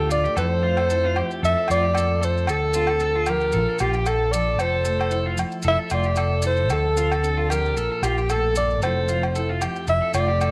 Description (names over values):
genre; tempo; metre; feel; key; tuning
highlife guitar band; 114 BPM; 4/4; swing 53% on 16ths; F major; A4 = 439 Hz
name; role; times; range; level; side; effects
breathy alto saxophone; melody; 0.0-10.5 s; G4 to E5; -25 LUFS; equal; none
fingerpicked steel-string acoustic guitar; accompaniment; 0.0-10.5 s; F2 to A4; -34 LUFS; equal; none
electric guitar at the edge of break-up; arpeggios; 0.0-10.5 s; F4 to A4; -31 LUFS; equal; lush chorus
fingered electric bass; bass; 0.0-10.5 s; F1 to F2; -27 LUFS; equal; none
maracas; percussion; 0.1-10.5 s; none; -38 LUFS; equal; none
agogo bells; percussion; 0.4-10.5 s; none; -34 LUFS; equal; none
room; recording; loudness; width
light reverb, small room ambience; none; -22 LUFS; mono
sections
0.4-10.5 A section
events
none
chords
0.4 Fmaj7; 2.5 Dm7; 3.5 Bbmaj7; 4.6 Fmaj7; 6.7 Dm7; 7.8 Bb5; 8.8 Fmaj7